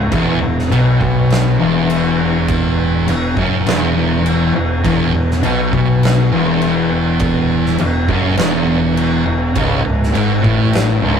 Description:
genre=stoner and doom metal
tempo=102 BPM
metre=4/4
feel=straight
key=unclear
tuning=A4 = 440 Hz
part: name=thick fuzz guitar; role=riff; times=0.0-11.2 s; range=C#2 to B2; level=-17 LUFS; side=left 6 dB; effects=distortion
part: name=thick fuzz guitar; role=riff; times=0.0-11.2 s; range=C#2 to B2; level=-17 LUFS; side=right 4 dB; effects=distortion
part: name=growling picked electric bass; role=bass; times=0.0-11.2 s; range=C#1 to B1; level=-22 LUFS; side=right 1 dB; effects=overdrive
part: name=oversized low-tuned drum kit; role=drums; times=0.1-10.9 s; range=crash cymbal, kick drum, snare drum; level=-20 LUFS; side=right 1 dB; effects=none
room=moderate small room reverb, RT60 0.5 s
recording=rough rehearsal-room recording, tube saturation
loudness=-12 LUFS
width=side -7 dB against mid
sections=0.0-11.2 A section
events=none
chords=0.1 E5; 9.6 C#5

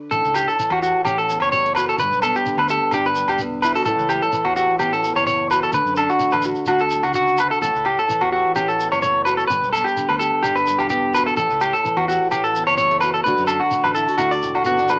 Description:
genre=highlife guitar band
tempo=128 BPM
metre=4/4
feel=swing 53% on 16ths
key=A mixolydian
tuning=A4 = 440 Hz
part: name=nylon-string guitar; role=accompaniment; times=0.0-15.0 s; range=E2 to G4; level=-29 LUFS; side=equal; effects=none
part: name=electric guitar at the edge of break-up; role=arpeggios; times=0.1-15.0 s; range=F#4 to D5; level=-20 LUFS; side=equal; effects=tape echo
part: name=vintage muted fingered electric bass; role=bass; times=0.1-15.0 s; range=E1 to F#2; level=-38 LUFS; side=equal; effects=none
part: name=shekere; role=percussion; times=0.1-15.0 s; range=none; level=-36 LUFS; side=equal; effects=none
part: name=agogo bells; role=percussion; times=0.3-15.0 s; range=none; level=-30 LUFS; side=equal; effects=none
room=moderate booth ambience, RT60 0.2 s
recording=home recording on cassette, small speaker sound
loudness=-19 LUFS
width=mono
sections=0.1-15.0 A section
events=none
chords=0.1 A; 2.0 G; 3.9 A; 5.7 D; 7.6 A; 9.5 G; 11.4 A; 13.3 D

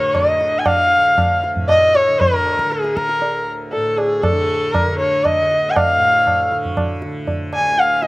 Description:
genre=indian classical, Hindustani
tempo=118 BPM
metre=5/4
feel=straight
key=D raga todi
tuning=A4 = 441 Hz
part: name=warm sarangi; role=melody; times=0.0-8.1 s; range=G#4 to G#5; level=-15 LUFS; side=equal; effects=slapback echo
part: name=tanpura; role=drone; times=0.0-8.1 s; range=D2 to D3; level=-27 LUFS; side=right 1 dB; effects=none
part: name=tabla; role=percussion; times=0.1-8.1 s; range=none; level=-22 LUFS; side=right 1 dB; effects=none
room=little or no reverb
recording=recorded outdoors, with no room sound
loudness=-14 LUFS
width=side -21 dB against mid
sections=0.0-8.1 A section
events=none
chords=none

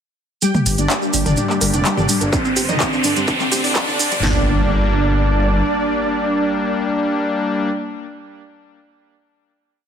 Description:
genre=melodic techno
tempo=126 BPM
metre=4/4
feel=straight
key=G minor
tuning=A4 = 439 Hz
part: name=analog synth brass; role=melody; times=0.4-7.7 s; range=D3 to G4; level=-23 LUFS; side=right 1 dB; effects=chorus, sidechain pumping, ping-pong delay
part: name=soft supersaw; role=second line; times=0.4-7.7 s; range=G4 to G5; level=-27 LUFS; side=right 1 dB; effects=sidechain pumping, ping-pong delay
part: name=wide unison pluck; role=arpeggios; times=0.4-4.5 s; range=G3 to G5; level=-26 LUFS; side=equal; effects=sidechain pumping, ping-pong delay
part: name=techno drum kit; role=drums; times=0.4-4.2 s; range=handclaps, hi-hat, toms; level=-21 LUFS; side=equal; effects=overdrive, sidechain pumping on hats, studio reverb, sidechain pumping on toms
part: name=maracas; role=percussion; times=0.4-4.2 s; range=none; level=-25 LUFS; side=right 4 dB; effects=none
part: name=riser and impact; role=sound effects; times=1.2-7.7 s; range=none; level=-25 LUFS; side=equal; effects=none
part: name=dark detuned saw bass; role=bass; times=0.7-5.6 s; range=F1 to G2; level=-19 LUFS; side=equal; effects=sidechain pumping
part: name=brassy analog pad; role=stabs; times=0.8-7.7 s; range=D3 to D4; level=-22 LUFS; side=left 2 dB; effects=chorus, cassette tape, sidechain pumping, ping-pong delay
part: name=techno drum kit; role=drums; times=2.3-4.3 s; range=handclaps, kick drum, snare drum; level=-24 LUFS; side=equal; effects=distortion, studio reverb
room=moderate recital hall reverb, RT60 1.4 s, digital ambience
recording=dense, heavily limited modern master, high-pass filter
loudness=-15 LUFS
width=side -8 dB against mid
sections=0.4-4.2 build; 4.2-8.0 final chord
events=build-up 0.4-4.2; filter sweep on synth arpeggio sound 0.4-4.2; filter sweep on analog polysynth 0.4-4.2; filter sweep on analog synth pad 0.4-4.2; filter sweep 0.4-4.2; riser 1.2-4.2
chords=0.4 Gm; 2.3 Csus2/G; 4.2 Gm

